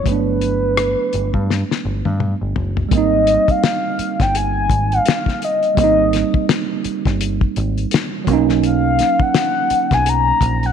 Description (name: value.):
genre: R&B, neo-soul.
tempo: 84 BPM.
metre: 4/4.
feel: swing 58% on 16ths.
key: unclear.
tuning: A4 = 440 Hz.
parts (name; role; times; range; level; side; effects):
mellow horn-like synth lead; melody; 0.0-10.7 s; B4 to A#5; -18 LUFS; left 3 dB; chorus, slapback echo.
tine electric piano; accompaniment; 0.0-10.7 s; F#3 to Eb4; -21 LUFS; right 12 dB; none.
deep dub picked electric bass; bass; 0.1-10.7 s; F#1 to G2; -20 LUFS; equal; tube saturation.
cloth-damped thuddy drum kit; drums; 0.1-10.7 s; hi-hat, kick drum, rim click, snare drum, toms; -20 LUFS; left 4 dB; none.
room: light reverb, studio reverb.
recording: 1960s-style stereo.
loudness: -15 LUFS.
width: side -8 dB against mid.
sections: 0.0-2.9 A section; 2.9-10.7 B section.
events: drum fill 1.5-2.9.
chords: 0.0 Gmaj9; 2.9 Abmaj9; 8.3 Bmaj9.